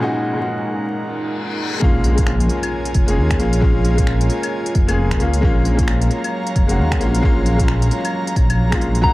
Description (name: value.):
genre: future garage.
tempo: 133 BPM.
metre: 4/4.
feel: swing 60% on 16ths.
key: Bb minor.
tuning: A4 = 441 Hz.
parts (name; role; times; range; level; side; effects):
bright upright piano; accompaniment; 0.0-9.1 s; Bb2 to Ab4; -22 LUFS; left 1 dB; sidechain pumping, analog delay.
airy breathy pad; sustained chords; 0.0-9.1 s; Bb2 to Bb5; -26 LUFS; right 1 dB; chorus, sidechain pumping.
reverse cymbal and impact; sound effects; 1.1-3.6 s; none; -27 LUFS; equal; none.
dark detuned saw bass; bass; 1.8-9.1 s; F1 to Eb2; -18 LUFS; equal; sidechain pumping.
electronic kick drum; drums; 1.8-9.1 s; none; -18 LUFS; equal; none.
organic electronic drum kit; drums; 2.0-9.0 s; claves, finger snaps, hi-hat; -28 LUFS; left 1 dB; dub echo.
soft synth bell; melody; 9.0-9.1 s; Bb5; -15 LUFS; left 1 dB; chorus.
room: light reverb, digital ambience.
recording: echo-heavy mix, vinyl crackle.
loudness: -15 LUFS.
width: side -18 dB against mid.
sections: 0.0-1.8 A section; 1.8-9.1 B section.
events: reverse cymbal 1.1-1.8; impact 1.8-3.6.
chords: 0.0 B6/Bb (rootless); 1.8 Bbm7; 5.4 Gbmaj7.